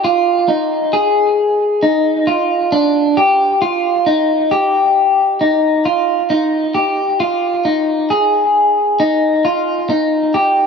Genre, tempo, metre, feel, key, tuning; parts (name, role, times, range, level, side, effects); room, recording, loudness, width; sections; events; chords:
dream pop; 67 BPM; 4/4; straight; A4 = 439 Hz
electric guitar at the edge of break-up; solo; 0.0-10.7 s; D4 to Ab4; -12 LUFS; equal; lush chorus, analog delay
wet spring reverb, RT60 2.6 s; echo-heavy mix; -12 LUFS; side -5 dB against mid
0.0-10.7 A section